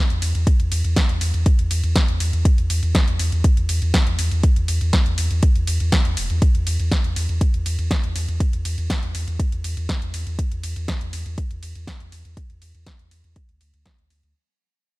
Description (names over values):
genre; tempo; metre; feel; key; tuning
progressive house; 121 BPM; 4/4; straight; unclear; A4 = 440 Hz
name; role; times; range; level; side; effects
saturated sub bass; bass; 0.1-14.3 s; E1 to E2; -22 LUFS; equal; sidechain pumping
house drum kit; drums; 0.1-14.3 s; hi-hat, ride cymbal, snare drum; -26 LUFS; equal; none
electronic kick drum; drums; 0.5-14.0 s; none; -18 LUFS; equal; none
room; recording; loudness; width
little or no reverb; none; -18 LUFS; side -21 dB against mid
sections
0.0-14.4 A section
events
drop 0.0-14.4; fade-out 6.4-14.4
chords
none